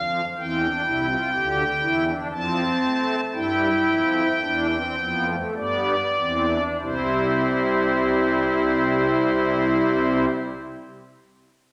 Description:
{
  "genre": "classical, baroque-style 3-part fugue for pipe organ",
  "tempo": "47-65 BPM",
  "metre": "3/4",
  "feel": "straight",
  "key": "C major",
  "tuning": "A4 = 436 Hz",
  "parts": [
    { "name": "pipe organ, strings celeste", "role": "solo", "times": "0.0-10.3 s", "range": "C2 to A5", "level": "-22 LUFS", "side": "equal", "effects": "none" }
  ],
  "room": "wet scoring stage reverb, RT60 1.6 s",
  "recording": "none",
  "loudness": "-22 LUFS",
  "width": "mono",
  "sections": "0.0-6.8 A section; 6.8-10.7 B section",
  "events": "slowing down 0.0-6.8",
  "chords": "0.4 C; 2.3 F; 3.4 C (rootless); 5.6 G; 6.8 C"
}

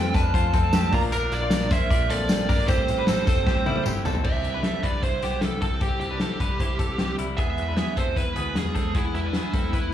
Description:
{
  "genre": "jangly indie pop",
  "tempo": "153 BPM",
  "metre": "4/4",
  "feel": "straight",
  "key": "C major",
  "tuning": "A4 = 440 Hz",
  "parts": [
    { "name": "fuzz lead guitar", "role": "melody", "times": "0.0-9.9 s", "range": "E4 to Bb5", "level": "-28 LUFS", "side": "right 4 dB", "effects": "distortion, slapback echo" },
    { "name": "raw garage guitar", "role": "accompaniment", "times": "0.0-9.9 s", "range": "A2 to A4", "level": "-33 LUFS", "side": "right 5 dB", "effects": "overdrive, slapback echo" },
    { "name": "warm upright piano", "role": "accompaniment", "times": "0.0-4.3 s", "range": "C4 to D5", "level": "-40 LUFS", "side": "left 3 dB", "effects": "none" },
    { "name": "direct-recorded clean electric guitar", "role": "arpeggios", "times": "0.0-9.9 s", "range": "G3 to D5", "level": "-30 LUFS", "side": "left 5 dB", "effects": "lush chorus, slapback echo" },
    { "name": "deep dub picked electric bass", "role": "bass", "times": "0.0-9.9 s", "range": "G1 to F2", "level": "-28 LUFS", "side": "left 1 dB", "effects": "none" },
    { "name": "loose indie drum kit", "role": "drums", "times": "0.1-9.8 s", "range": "crash cymbal, hi-hat, kick drum, snare drum, toms", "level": "-25 LUFS", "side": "left 1 dB", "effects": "none" },
    { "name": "tambourine", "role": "percussion", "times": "0.1-4.1 s", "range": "none", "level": "-42 LUFS", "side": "left 4 dB", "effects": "none" }
  ],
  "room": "light reverb",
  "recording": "live gig heard through the venue's PA, club reverb, small room reverb",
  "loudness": "-21 LUFS",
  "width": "side -10 dB against mid",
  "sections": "0.0-4.2 A section; 4.2-9.9 B section",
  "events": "drum fill 3.5-4.2",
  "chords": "0.0 F; 0.9 Bb; 2.7 Am7; 4.2 C; 7.4 E"
}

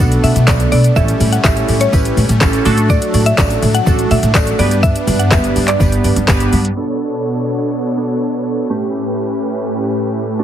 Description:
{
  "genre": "dance-pop",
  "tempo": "124 BPM",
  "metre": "4/4",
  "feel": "straight",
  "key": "B minor",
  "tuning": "A4 = 439 Hz",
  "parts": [
    { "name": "mallet-like synth pluck", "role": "melody", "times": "0.0-6.0 s", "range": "C#5 to F#5", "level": "-19 LUFS", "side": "equal", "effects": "chorus, sidechain pumping, digital delay" },
    { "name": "glassy digital keys", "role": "accompaniment", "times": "0.0-10.4 s", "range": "A3 to B4", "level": "-19 LUFS", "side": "right 3 dB", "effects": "chorus, sidechain pumping" },
    { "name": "supersaw chords", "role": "sustained chords", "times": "0.0-10.4 s", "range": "A2 to C#5", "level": "-20 LUFS", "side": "left 1 dB", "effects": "sidechain pumping" },
    { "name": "upright bass", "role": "bass", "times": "0.0-6.7 s", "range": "G1 to B2", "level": "-14 LUFS", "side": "equal", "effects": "sidechain pumping" },
    { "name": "smooth R&B drum kit", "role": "drums", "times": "0.0-6.8 s", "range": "handclaps, hi-hat, kick drum, shaker, snare drum", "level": "-16 LUFS", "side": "equal", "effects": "none" },
    { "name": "tambourine", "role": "percussion", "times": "0.2-6.6 s", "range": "none", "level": "-34 LUFS", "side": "left 8 dB", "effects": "none" }
  ],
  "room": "light reverb",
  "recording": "heavily compressed radio sound, multiband compression, low-pass filter",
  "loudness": "-12 LUFS",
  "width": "side -10 dB against mid",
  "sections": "0.0-6.8 A section; 6.8-10.4 B section",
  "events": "drop 0.0-6.8",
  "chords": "0.0 Bm7; 1.0 A7; 2.7 D/A; 4.6 G; 6.8 Bm7; 8.7 A7"
}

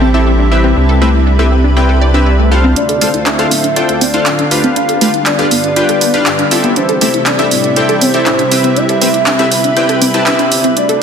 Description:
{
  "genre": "progressive house",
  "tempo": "120 BPM",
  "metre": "4/4",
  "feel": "straight",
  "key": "D dorian",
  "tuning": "A4 = 440 Hz",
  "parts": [
    { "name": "lush unison pad", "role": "sustained chords", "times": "0.0-11.0 s", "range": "C3 to B4", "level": "-17 LUFS", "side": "equal", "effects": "chorus" },
    { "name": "wide unison pluck", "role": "arpeggios", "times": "0.0-10.9 s", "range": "A3 to D5", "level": "-17 LUFS", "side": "equal", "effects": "ping-pong delay" },
    { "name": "supersaw stab", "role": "stabs", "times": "0.0-10.8 s", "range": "C4 to A5", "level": "-16 LUFS", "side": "left 1 dB", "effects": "ping-pong delay" },
    { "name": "saturated sub bass", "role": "bass", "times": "0.0-11.0 s", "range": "D1 to A2", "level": "-16 LUFS", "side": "equal", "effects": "high-pass filter" },
    { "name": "backwards swelling texture", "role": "texture", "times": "0.0-2.8 s", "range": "A5", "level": "-32 LUFS", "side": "right 1 dB", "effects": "none" },
    { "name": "soft octave-layered synth lead", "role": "melody", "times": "2.8-11.0 s", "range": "C5 to F5", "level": "-16 LUFS", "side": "equal", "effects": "chorus, phaser, ping-pong delay" },
    { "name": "house drum kit", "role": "drums", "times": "2.8-11.0 s", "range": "handclaps, hi-hat", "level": "-16 LUFS", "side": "right 2 dB", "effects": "overdrive, high-pass filter on hats, high-pass filter on snare, high-pass filter on room" }
  ],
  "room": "moderate lush hall reverb, RT60 1.8 s, digital ambience",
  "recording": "dense, heavily limited modern master, high-pass filter",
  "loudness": "-9 LUFS",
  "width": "side -7 dB against mid",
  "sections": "0.0-2.8 A section; 2.8-11.0 B section",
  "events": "build-up 2.8-11.0; filter sweep on synth pluck 2.8-11.0",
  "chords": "0.0 Am7; 0.8 Cmaj7; 2.8 Dm7; 4.8 G7; 6.8 Am7; 8.8 Cmaj7"
}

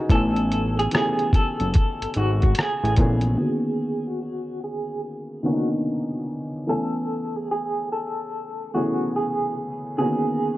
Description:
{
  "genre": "lo-fi hip hop",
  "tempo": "73 BPM",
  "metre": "4/4",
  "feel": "swing 63% on 16ths",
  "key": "unclear",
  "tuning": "A4 = 438 Hz",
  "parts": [
    { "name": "dark upright piano", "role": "accompaniment", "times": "0.0-10.6 s", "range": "D3 to G#5", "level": "-26 LUFS", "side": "equal", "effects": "cassette tape, low-pass filter" },
    { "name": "electric guitar through a small old amp", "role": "melody", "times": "0.1-10.6 s", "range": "F#4 to A4", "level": "-27 LUFS", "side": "right 1 dB", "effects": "tremolo, low-pass filter, tape echo" },
    { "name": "fat analog bass", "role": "bass", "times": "0.1-3.4 s", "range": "F#1 to A#1", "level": "-22 LUFS", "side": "equal", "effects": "none" },
    { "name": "lo-fi sampler-style drum kit", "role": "drums", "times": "0.1-3.4 s", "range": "hi-hat, kick drum, rim click", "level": "-20 LUFS", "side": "equal", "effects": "none" }
  ],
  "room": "moderate spring reverb, RT60 2.1 s",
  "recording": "worn, warbling old tape, cassette tape, warbly pitch drift",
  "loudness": "-21 LUFS",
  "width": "side -16 dB against mid",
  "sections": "0.0-3.4 A section; 3.4-10.6 B section",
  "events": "filter sweep 3.4-10.6",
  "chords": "0.1 Amaj9; 3.4 Bmaj9; 6.7 Amaj9; 10.0 Bmaj9"
}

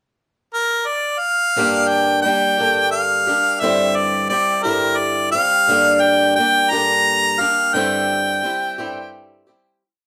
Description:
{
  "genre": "rock",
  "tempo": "58 BPM (dotted quarters)",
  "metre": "6/8",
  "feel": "straight",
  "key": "G dorian",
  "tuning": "A4 = 441 Hz",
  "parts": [
    { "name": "clear harmonica", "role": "melody", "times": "0.5-9.1 s", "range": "Bb4 to Bb5", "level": "-19 LUFS", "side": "equal", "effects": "none" },
    { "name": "picked swing-style acoustic guitar", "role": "accompaniment", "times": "1.6-9.8 s", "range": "G2 to G4", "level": "-23 LUFS", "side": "equal", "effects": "none" }
  ],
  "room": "moderate studio reverb, RT60 0.7 s",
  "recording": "band playing live in one room",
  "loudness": "-17 LUFS",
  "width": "mono",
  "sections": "0.0-1.6 pickup bar; 1.6-9.8 verse",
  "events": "fade-out 7.7-9.8",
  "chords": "0.0 N.C.; 1.6 Gm; 3.6 Cadd9/G; 5.7 Gm; 7.7 Cadd9/G"
}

